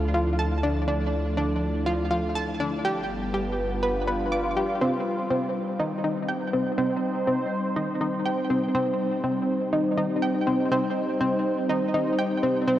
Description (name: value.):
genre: ambient, sequencer-driven space music.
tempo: 122 BPM.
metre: 4/4.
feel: straight.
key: C minor from 4.8 s.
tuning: A4 = 437 Hz.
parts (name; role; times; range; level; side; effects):
sweeping resonant pad; sustained chords; 0.0-12.8 s; F3 to C5; -26 LUFS; equal; chorus.
analog pluck; riff; 0.0-12.8 s; C4 to D6; -26 LUFS; equal; chorus, tape echo.
warm sub bass; bass; 0.0-4.8 s; G1 to D2; -30 LUFS; equal; none.
room: wet huge ambient reverb, RT60 7.4 s.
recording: worn, warbling old tape, cassette tape, warbly pitch drift.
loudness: -23 LUFS.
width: side -12 dB against mid.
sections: 0.0-4.8 A section; 4.8-12.8 B section.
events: none.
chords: 0.0 Dmadd9; 2.8 G7; 4.8 Cm.